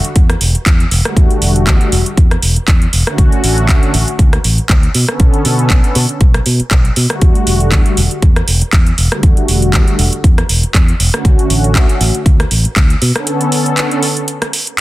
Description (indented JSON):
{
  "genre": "nu-disco, nu disco",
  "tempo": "119 BPM",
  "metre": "4/4",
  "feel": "swing 55% on 16ths",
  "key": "E dorian",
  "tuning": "A4 = 440 Hz",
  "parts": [
    { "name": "house drum kit", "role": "drums", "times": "0.0-14.8 s", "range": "handclaps, hi-hat, rim click", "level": "-17 LUFS", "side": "right 1 dB", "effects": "soft clipping on snare" },
    { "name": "fingered electric bass with an envelope filter", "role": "bass", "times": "0.2-13.1 s", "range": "E1 to B2", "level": "-14 LUFS", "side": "equal", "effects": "sidechain pumping" },
    { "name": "electronic kick drum", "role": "drums", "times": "0.2-12.9 s", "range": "none", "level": "-10 LUFS", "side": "equal", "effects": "none" },
    { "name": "warm analog pad", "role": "accompaniment", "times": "1.0-14.0 s", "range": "D3 to A4", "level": "-17 LUFS", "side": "equal", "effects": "chorus, sidechain pumping, analog delay" }
  ],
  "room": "little or no reverb",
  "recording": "dense, heavily limited modern master",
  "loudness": "-9 LUFS",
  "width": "side -17 dB against mid",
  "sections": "0.0-14.8 A section",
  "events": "break 13.3-14.8",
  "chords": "0.0 Em11; 3.2 Dmaj7; 4.9 Bm9; 7.2 Em11; 11.3 Dmaj7; 13.0 Bm9"
}